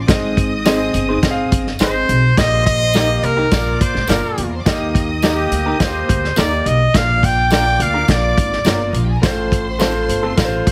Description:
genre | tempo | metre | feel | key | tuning
uptempo 1960s-style soul | 105 BPM | 4/4 | straight | Eb major | A4 = 440 Hz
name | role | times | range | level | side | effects
rich studio string section | second line | 0.0-10.7 s | D4 to Eb6 | -31 LUFS | equal | none
clear concert grand piano | accompaniment | 0.1-10.7 s | Ab2 to F5 | -24 LUFS | equal | none
upright bass | bass | 0.1-10.7 s | G1 to Fb2 | -23 LUFS | equal | none
warm soul drum kit | drums | 0.1-10.7 s | hi-hat, kick drum, snare drum | -20 LUFS | equal | none
tambourine | percussion | 0.1-10.5 s | none | -35 LUFS | equal | none
electric guitar through a small old amp | stabs | 0.7-10.3 s | A3 to C5 | -25 LUFS | equal | none
clear trumpet | melody | 1.8-10.7 s | G4 to G5 | -20 LUFS | equal | none
room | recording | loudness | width
light reverb | heavily compressed radio sound | -16 LUFS | mono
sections
0.0-10.7 A section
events
none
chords
0.1 Ab; 2.4 Eb/Bb; 3.5 Bb; 4.7 Eb; 6.9 Bb; 9.2 F

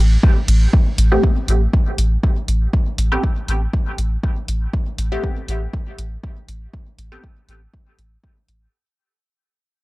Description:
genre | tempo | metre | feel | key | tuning
dub techno | 120 BPM | 4/4 | swing 54% on 16ths | A minor | A4 = 440 Hz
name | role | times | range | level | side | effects
round analog bass | bass | 0.0-8.7 s | A1 | -16 LUFS | equal | sidechain pumping
electronic kick drum | drums | 0.2-8.3 s | none | -17 LUFS | equal | overdrive
punchy analog drum machine | drums | 0.5-8.6 s | hi-hat, ride cymbal | -27 LUFS | equal | none
filtered dub chord stab | stabs | 1.1-7.2 s | A3 to G4 | -24 LUFS | equal | phaser, cassette tape, sidechain pumping, dub echo
room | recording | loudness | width
little or no reverb | dry, gritty hardware recording, cassette tape | -16 LUFS | side -21 dB against mid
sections
0.7-8.7 A section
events
fade-out 0.7-8.7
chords
0.0 N.C.; 0.7 Am9

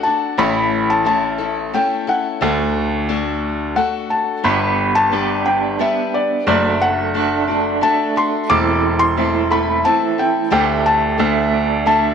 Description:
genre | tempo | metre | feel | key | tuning
acoustic folk duo or small band | 89 BPM | 3/4 | straight | G major | A4 = 442 Hz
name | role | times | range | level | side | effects
felt-muted upright piano | melody | 0.0-12.1 s | D5 to D6 | -18 LUFS | left 2 dB | none
picked steel-string acoustic guitar | accompaniment | 0.0-12.1 s | A2 to B4 | -22 LUFS | left 10 dB | none
bright baby grand piano | bass | 0.4-12.1 s | E1 to D2 | -20 LUFS | right 3 dB | none
electric guitar through a small old amp | arpeggios | 4.4-12.1 s | E3 to G4 | -20 LUFS | right 10 dB | tremolo
room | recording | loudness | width
moderate plate reverb, RT60 3.4 s | 1960s-style stereo with parts hard left and right | -15 LUFS | side -7 dB against mid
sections
0.0-4.4 A section; 4.4-12.1 A section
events
none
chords
0.4 A; 2.4 D; 4.4 G; 6.5 D/F#; 8.5 Am/E; 10.5 Dsus4; 11.2 D

